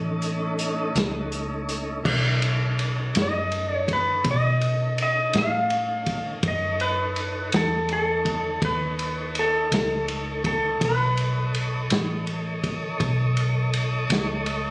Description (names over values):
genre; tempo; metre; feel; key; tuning
slow blues; 55 BPM (dotted quarters); 12/8; straight; B mixolydian; A4 = 445 Hz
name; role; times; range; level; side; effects
clean lap steel guitar; melody; 0.0-12.3 s; A4 to E#5; -25 LUFS; equal; none
tonewheel organ; sustained chords; 0.0-14.7 s; A3 to D#5; -31 LUFS; equal; slow rotary speaker
vintage muted fingered electric bass; bass; 0.0-14.7 s; A1 to B2; -26 LUFS; equal; none
vintage drum kit; drums; 0.2-14.6 s; crash cymbal, hi-hat, kick drum, ride cymbal, snare drum; -28 LUFS; equal; none
room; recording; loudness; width
light reverb; recorded on a phone in the room, studio reverb; -22 LUFS; side -24 dB against mid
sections
0.0-2.1 A section; 2.1-14.7 A section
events
none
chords
0.0 B7